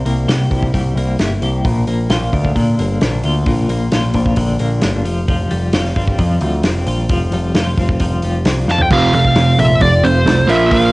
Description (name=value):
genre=quiet-loud alternative rock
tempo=132 BPM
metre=4/4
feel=straight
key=unclear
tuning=A4 = 437 Hz
part: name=twelve-string electric guitar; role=arpeggios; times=0.0-10.9 s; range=F2 to G4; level=-20 LUFS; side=left 2 dB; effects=tremolo, analog delay
part: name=growling picked electric bass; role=bass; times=0.0-10.9 s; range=F1 to Bb2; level=-17 LUFS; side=equal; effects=overdrive
part: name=loose indie drum kit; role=drums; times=0.1-10.8 s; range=crash cymbal, hi-hat, kick drum, snare drum, toms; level=-19 LUFS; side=equal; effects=none
part: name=biting lead guitar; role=melody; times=8.7-10.9 s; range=C5 to A5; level=-14 LUFS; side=left 1 dB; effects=overdrive, cassette tape
part: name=overdriven semi-hollow guitar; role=riff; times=8.9-10.9 s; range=F2 to Bb3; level=-12 LUFS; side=right 3 dB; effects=none
room=light reverb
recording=home recording on cassette, nothing above 10.9 kHz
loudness=-12 LUFS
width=side -21 dB against mid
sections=0.0-8.9 A section; 8.9-10.9 B section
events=drum fill 8.7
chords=0.0 C7; 1.7 Bb; 5.1 Fsus2; 8.9 F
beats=0.29 0.74 1.20 | 1.65 2.10 2.56 3.01 | 3.47 3.92 4.38 4.83 | 5.29 5.74 6.19 6.65 | 7.10 7.56 8.01 8.46 | 8.92 9.37 9.82 10.27 | 10.73